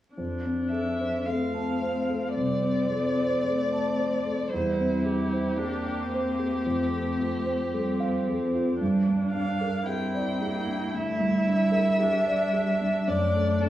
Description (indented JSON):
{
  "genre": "classical, slow romantic movement for piano quartet",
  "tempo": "56 BPM",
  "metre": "4/4",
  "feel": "rubato",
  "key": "F major",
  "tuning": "A4 = 436 Hz",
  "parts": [
    { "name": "rich viola", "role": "accompaniment", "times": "0.1-13.7 s", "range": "C4 to E4", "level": "-31 LUFS", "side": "equal", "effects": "none" },
    { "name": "warm cello", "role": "second line", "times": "0.2-13.7 s", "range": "F3 to C4", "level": "-31 LUFS", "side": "right 2 dB", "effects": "none" },
    { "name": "dark grand piano", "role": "accompaniment", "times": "0.2-13.7 s", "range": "E2 to A5", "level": "-28 LUFS", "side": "equal", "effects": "none" },
    { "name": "rich violin", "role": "melody", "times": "0.7-13.7 s", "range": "G4 to G5", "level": "-29 LUFS", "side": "left 1 dB", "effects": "none" }
  ],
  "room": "wet recital hall reverb, RT60 1.2 s",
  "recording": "vinyl crackle, small room ambience",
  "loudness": "-24 LUFS",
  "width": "side -13 dB against mid",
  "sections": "0.2-13.7 A section",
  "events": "none",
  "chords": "0.2 F; 4.5 C/E; 6.7 F; 8.8 Gm; 13.1 D/F#"
}